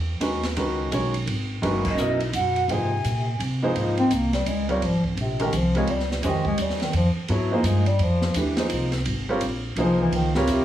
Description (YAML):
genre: modal jazz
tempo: 170 BPM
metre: 3/4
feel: swing 63% on 8ths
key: Db lydian from 3.8 s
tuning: A4 = 437 Hz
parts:
  - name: upright bass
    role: bass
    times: 0.0-10.6 s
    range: F#1 to B#2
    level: -26 LUFS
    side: equal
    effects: none
  - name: clear baby grand piano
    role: accompaniment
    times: 0.2-10.6 s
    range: C#2 to D#5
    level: -26 LUFS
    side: right 1 dB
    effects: none
  - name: open jazz drum kit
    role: drums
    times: 0.2-10.6 s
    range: crash cymbal, hi-hat, kick drum, ride cymbal, snare drum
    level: -32 LUFS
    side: right 1 dB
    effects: none
  - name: mellow hollow jazz flute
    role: melody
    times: 1.9-3.4 s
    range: D#5 to G#5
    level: -27 LUFS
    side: right 3 dB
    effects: none
  - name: breathy bass clarinet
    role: second line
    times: 1.9-10.6 s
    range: F#2 to C4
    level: -24 LUFS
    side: left 1 dB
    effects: none
room: moderate club reverb, RT60 0.8 s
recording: heavily compressed radio sound, small room ambience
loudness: -21 LUFS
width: side -12 dB against mid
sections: 0.0-3.8 A section; 3.8-10.6 B section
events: band accent 1.8; bass clarinet solo 3.8-10.6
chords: 0.0 F#9sus4; 2.7 G#; 3.8 Dbmaj9